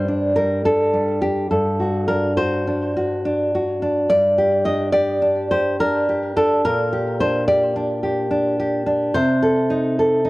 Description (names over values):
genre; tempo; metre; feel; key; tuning
romantic piece for solo classical guitar; 71 BPM; 3/4; rubato; G minor; A4 = 440 Hz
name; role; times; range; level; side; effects
nylon-string guitar; solo; 0.0-10.3 s; G2 to Eb5; -17 LUFS; equal; none
room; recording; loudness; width
wet studio reverb, RT60 0.5 s; worn, warbling old tape, cassette tape, warbly pitch drift; -17 LUFS; side -20 dB against mid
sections
0.0-10.3 A section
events
none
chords
0.0 G5; 1.5 D7/G; 4.1 G5; 6.6 Gm/Bb; 9.1 Adim/C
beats
0.65 | 1.50 2.37 3.25 | 4.10 4.93 5.79 | 6.63 7.47 8.31 | 9.15 9.97